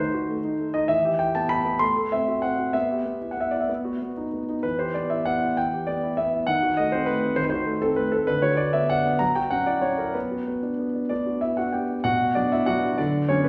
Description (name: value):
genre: classical-period piano sonatina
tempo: 64 BPM (dotted quarters)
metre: 6/8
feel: rubato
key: E minor, B minor from 8.3 s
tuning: A4 = 438 Hz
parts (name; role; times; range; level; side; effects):
- warm concert grand piano; solo; 0.0-13.5 s; B2 to C6; -24 LUFS; equal; none
room: wet recital hall reverb, RT60 1.5 s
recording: heard from further back in the room, nothing above 10.3 kHz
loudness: -24 LUFS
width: mono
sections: 0.0-12.1 A section; 12.1-13.5 B section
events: none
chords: 0.0 D#dim7; 0.9 Em; 1.8 F#dim/A; 2.7 Em/B; 3.7 B; 4.6 Em; 6.5 D#dim7; 8.3 Bm/D; 9.2 F#5; 10.2 Bm; 13.0 Bm/D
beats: | 0.89 1.81 | 2.75 3.70 | 4.64 5.57 | 6.48 7.37 | 8.27 9.20 | 10.15 11.11 | 12.05 12.98